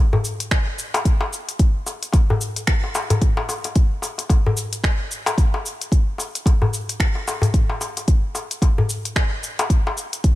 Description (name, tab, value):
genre	downtempo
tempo	111 BPM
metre	4/4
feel	swing 59% on 16ths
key	none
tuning	none
part	darbuka	percussion	0.1-10.0 s	none	-23 LUFS	left 2 dB	none
part	organic electronic drum kit	drums	0.2-10.4 s	finger snaps, hi-hat, shaker	-26 LUFS	equal	none
part	electronic kick drum	drums	0.5-10.4 s	none	-17 LUFS	equal	none
room	little or no reverb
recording	none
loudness	-18 LUFS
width	side -16 dB against mid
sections	0.0-10.4 A section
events	none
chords	none